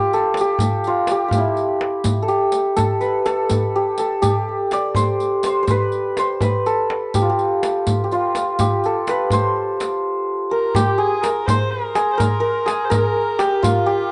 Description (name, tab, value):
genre	Persian modal ensemble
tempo	83 BPM (dotted quarters)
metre	6/8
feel	straight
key	C dastgah shur from 10.8 s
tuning	A4 = 440 Hz
part	santur	melody	0.0-14.1 s	E4 to D5	-20 LUFS	equal	none
part	riq	percussion	0.1-13.8 s	none	-30 LUFS	equal	none
part	tombak	percussion	0.1-13.7 s	none	-25 LUFS	equal	none
part	warm kamancheh	second line	10.5-14.1 s	F4 to C5	-28 LUFS	equal	none
room	moderate studio reverb, RT60 0.6 s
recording	nothing above 10.3 kHz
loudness	-19 LUFS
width	mono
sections	0.0-10.8 A section; 10.8-14.1 B section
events	none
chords	none